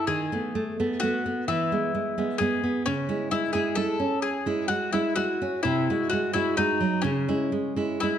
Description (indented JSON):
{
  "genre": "romantic duo for mandolin and classical guitar",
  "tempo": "43 BPM (dotted quarters)",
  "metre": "6/8",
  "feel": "rubato",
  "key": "unclear",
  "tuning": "A4 = 438 Hz",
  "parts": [
    { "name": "bowl-back mandolin", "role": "melody", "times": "0.0-8.2 s", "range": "C#4 to A4", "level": "-27 LUFS", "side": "left 4 dB", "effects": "none" },
    { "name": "nylon-string guitar", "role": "accompaniment", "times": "0.0-8.2 s", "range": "B#2 to F#4", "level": "-26 LUFS", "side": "right 3 dB", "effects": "none" }
  ],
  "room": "moderate recital hall reverb, RT60 1.5 s",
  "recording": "dark, warm production",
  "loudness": "-24 LUFS",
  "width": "side -9 dB against mid",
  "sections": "0.0-8.2 A section",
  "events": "none",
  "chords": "0.1 B7/D#; 1.5 E; 2.9 C#m; 5.6 G#7/B#; 7.0 C#m"
}